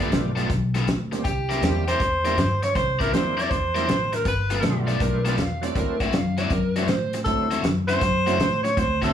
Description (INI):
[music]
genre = electric blues shuffle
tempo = 160 BPM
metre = 4/4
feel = swing 66% on 8ths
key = unclear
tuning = A4 = 440 Hz
[part]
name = overdriven slide guitar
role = second line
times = 0.0-0.1, 4.9-7.2 s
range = Bb4 to F5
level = -30 LUFS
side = right 2 dB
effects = plate reverb
[part]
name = bright tonewheel organ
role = accompaniment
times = 0.0-9.1 s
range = F#3 to G4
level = -30 LUFS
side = right 6 dB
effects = slow rotary speaker, overdrive, chorus vibrato, plate reverb
[part]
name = overdriven semi-hollow guitar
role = riff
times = 0.0-9.1 s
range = D3 to D5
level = -29 LUFS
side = left 5 dB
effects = none
[part]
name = upright bass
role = bass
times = 0.0-9.1 s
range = G1 to A2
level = -26 LUFS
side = left 1 dB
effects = none
[part]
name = warm soul drum kit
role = drums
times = 0.0-9.1 s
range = hi-hat, kick drum, snare drum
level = -27 LUFS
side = equal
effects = none
[part]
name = warm tenor saxophone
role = melody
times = 1.2-4.8, 7.2-9.1 s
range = G4 to D5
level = -24 LUFS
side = right 1 dB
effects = plate reverb
[sound]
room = light reverb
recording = small room ambience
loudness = -20 LUFS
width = side -9 dB against mid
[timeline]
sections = 0.0-9.1 A section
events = none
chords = 0.0 G9; 1.2 C9; 4.3 G9; 5.8 D9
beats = 0.12 0.50 0.87 | 1.25 1.62 2.00 2.38 | 2.75 3.13 3.50 3.88 | 4.25 4.63 5.01 5.38 | 5.76 6.13 6.51 6.89 | 7.26 7.64 8.01 8.39 | 8.77